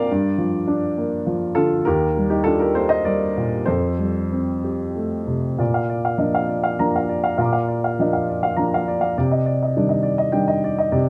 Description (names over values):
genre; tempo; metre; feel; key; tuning
neoclassical minimalist piano; 101 BPM; 3/4; rubato; Bb major; A4 = 440 Hz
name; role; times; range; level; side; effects
warm baby grand piano; solo; 0.0-11.1 s; Eb2 to D6; -21 LUFS; equal; none
room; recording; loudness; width
light reverb; close, detailed microphones; -21 LUFS; mono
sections
0.0-5.6 A section; 5.6-11.1 B section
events
none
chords
0.1 Gm7; 1.8 Ebmaj7; 3.7 Fadd9; 5.6 Bb; 9.2 Cmadd9